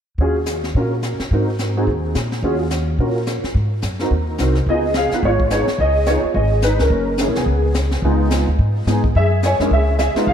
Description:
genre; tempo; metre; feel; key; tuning
jazz piano trio; 214 BPM; 4/4; swing 60% on 8ths; Db mixolydian; A4 = 440 Hz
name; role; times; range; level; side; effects
warm grand piano; melody; 0.2-10.3 s; Ab3 to Ab5; -19 LUFS; equal; ensemble chorus, diffuse ambient delay
upright bass; bass; 0.2-10.3 s; Gb1 to Bb2; -19 LUFS; equal; none
jazz brush drum kit; drums; 0.2-10.3 s; brushed snare drum, hi-hat, kick drum, snare drum; -25 LUFS; left 1 dB; none
room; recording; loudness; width
moderate lush hall reverb, RT60 1.7 s, studio reverb; dreamy mix soaked in reverb; -16 LUFS; side -8 dB against mid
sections
0.2-4.7 A section; 4.7-10.3 B section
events
none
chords
0.2 Ebm9; 1.3 Ab7; 2.4 Ebm9; 3.6 Ab7; 4.7 Db9; 6.9 Gbadd9; 8.0 Db9; 9.2 Gb7sus2

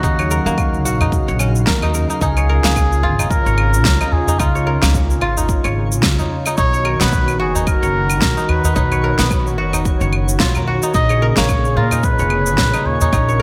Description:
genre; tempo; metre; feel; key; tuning
organic downtempo; 110 BPM; 4/4; swing 57% on 16ths; unclear; A4 = 440 Hz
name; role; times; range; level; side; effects
trumpet with cup mute; melody; 0.0-13.4 s; F4 to Eb5; -24 LUFS; equal; delay
warm analog pad; sustained chords; 0.0-13.4 s; Bb2 to Bb4; -26 LUFS; equal; chorus, vintage 12-bit sampler grit, sidechain pumping
kora; arpeggios; 0.0-13.4 s; Bb3 to Db5; -25 LUFS; equal; delay
upright bass; bass; 0.0-13.4 s; F1 to Bb2; -21 LUFS; equal; sidechain pumping
electronic kick drum; drums; 0.0-13.2 s; none; -22 LUFS; equal; overdrive
electronic shaker, claves and snare drum; drums; 0.0-13.4 s; none; -24 LUFS; equal; gated reverb
twinkling granular texture; texture; 0.1-13.4 s; Db5 to F5; -36 LUFS; equal; none
udu; percussion; 1.0-13.1 s; none; -24 LUFS; equal; none
room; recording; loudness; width
moderate plate reverb, RT60 2.2 s; bright 1980s-style digital production; -16 LUFS; mono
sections
0.0-2.2 A section; 2.2-13.4 B section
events
none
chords
0.0 Ebm7; 2.2 Db; 6.6 B; 10.9 Bbm7

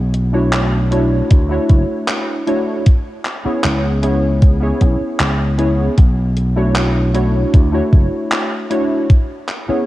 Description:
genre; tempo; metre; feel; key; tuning
vaporwave; 77 BPM; 4/4; straight; B dorian; A4 = 440 Hz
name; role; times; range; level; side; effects
vintage slap bass; bass; 0.0-9.7 s; F#1 to D2; -16 LUFS; equal; none
gated 80s digital drum machine; drums; 0.1-9.6 s; handclaps, hi-hat; -22 LUFS; equal; gated reverb, overdrive, small room ambience
warbly lo-fi synth keys; accompaniment; 0.3-9.9 s; A3 to C#5; -18 LUFS; equal; analog chorus, analog delay
electronic kick drum; drums; 1.3-9.3 s; none; -10 LUFS; equal; overdrive, small room ambience
room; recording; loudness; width
light reverb, digital ambience; cassette tape; -13 LUFS; side -16 dB against mid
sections
0.0-9.9 A section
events
none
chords
0.0 Bm11; 2.9 C#m7; 6.0 Bm11; 9.1 C#m7

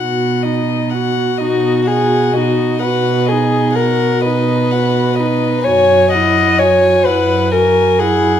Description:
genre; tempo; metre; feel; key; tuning
classical, slow romantic movement for string quartet; 42 BPM (dotted quarters); 12/8; rubato; B major; A4 = 440 Hz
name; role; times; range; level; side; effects
rich violin; melody; 0.0-8.4 s; D#5 to G#5; -21 LUFS; left 11 dB; none
dark viola; accompaniment; 0.0-8.4 s; D#4 to F#4; -19 LUFS; right 2 dB; none
warm cello; bass; 0.0-8.3 s; F#2 to B2; -18 LUFS; right 4 dB; none
dark violin; second line; 1.4-8.4 s; F#4 to D#5; -14 LUFS; left 2 dB; none
room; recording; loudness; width
wet recital hall reverb, RT60 1.5 s; minimal, uncompressed stereo recording; -11 LUFS; side -10 dB against mid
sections
0.0-8.4 A section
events
none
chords
0.0 B; 5.7 F#sus2

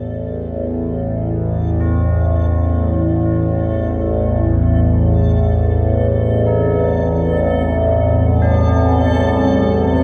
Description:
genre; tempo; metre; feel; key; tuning
dark ambient drone; free time; none; none; A minor; A4 = 440 Hz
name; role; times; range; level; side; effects
deep dark ambient pad; sustained chords; 3.3-10.0 s; Eb3 to E4; -27 LUFS; equal; none
overtone-sweeping drone; drone; 0.0-10.0 s; A1 to E2; -16 LUFS; equal; chorus, built-in reverb, phaser
backwards swelling texture; texture; 0.0-10.0 s; A4; -35 LUFS; equal; built-in reverb
tubular bells; arpeggios; 1.8-10.0 s; C4 to Eb4; -34 LUFS; equal; analog delay
room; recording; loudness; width
moderate huge ambient reverb, RT60 8.6 s; dreamy mix soaked in reverb; -16 LUFS; mono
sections
0.0-10.0 A section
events
fade-in on synth texture 0.0-10.0; fade-in on tubular bells 0.0-10.0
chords
0.0 Am; 6.4 Cm

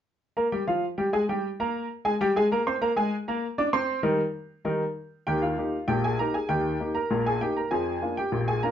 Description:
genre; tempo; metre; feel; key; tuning
ragtime piano; 98 BPM; 2/4; straight; Eb major; A4 = 441 Hz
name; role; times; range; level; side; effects
clear upright piano; solo; 0.4-8.7 s; Bb1 to D6; -24 LUFS; equal; none
room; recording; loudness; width
moderate studio reverb, RT60 0.5 s; heard from further back in the room, nothing above 7.8 kHz; -24 LUFS; side -9 dB against mid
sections
0.4-5.3 A section; 5.3-8.7 B section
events
none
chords
0.4 Eb; 7.7 Bb7

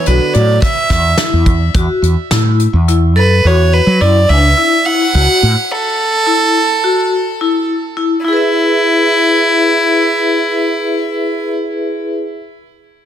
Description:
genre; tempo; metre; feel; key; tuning
progressive instrumental, band music in an uneven meter; 213 BPM (eighths); 9/8; straight; E mixolydian; A4 = 441 Hz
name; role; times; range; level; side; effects
rich violin; melody; 0.0-11.5 s; E4 to F#5; -14 LUFS; right 1 dB; plate reverb, ping-pong delay
mellow trombone; second line; 0.0-0.6 s; D3 to F#3; -21 LUFS; right 6 dB; plate reverb
bright concert grand piano; accompaniment; 0.0-0.6 s; E3 to A4; -34 LUFS; left 4 dB; none
vibraphone with medium hard mallets; arpeggios; 0.1-12.3 s; D4 to E5; -16 LUFS; left 2 dB; plate reverb
mellow fretless electric bass; bass; 0.1-5.5 s; B1 to F#3; -11 LUFS; equal; lush chorus
soft brush drum kit; drums; 0.1-3.0 s; hi-hat, kick drum, snare drum; -16 LUFS; equal; soft clipping on snare
room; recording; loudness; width
moderate studio reverb, RT60 0.8 s; dense, heavily limited modern master; -10 LUFS; side -10 dB against mid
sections
0.0-8.2 A section; 8.2-10.8 B section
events
none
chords
0.0 Esus4; 3.2 F#m; 8.2 E

